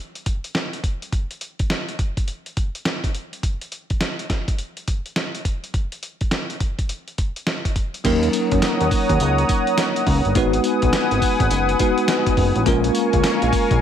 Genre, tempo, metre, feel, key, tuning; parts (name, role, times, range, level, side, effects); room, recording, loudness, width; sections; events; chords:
R&B, new jack swing; 104 BPM; 4/4; swing 63% on 16ths; A4 = 443 Hz
dusty soul sampler-style drum kit; drums; 0.2-13.8 s; crash cymbal, hi-hat, kick drum, snare drum, tambourine; -22 LUFS; equal; gated reverb
bell-like tine electric piano; accompaniment; 8.0-13.8 s; F#3 to B4; -21 LUFS; equal; fast stereo tremolo
warm analog pad; sustained chords; 8.3-13.8 s; A#4 to D#6; -22 LUFS; left 1 dB; chorus
fat analog bass; bass; 8.0-13.8 s; F#1 to F#2; -21 LUFS; equal
little or no reverb; -19 LUFS; side -9 dB against mid
0.0-8.0 A section; 8.0-13.8 B section
0.0 N.C.; 8.0 D#m7; 10.4 G#m7; 12.7 A#m7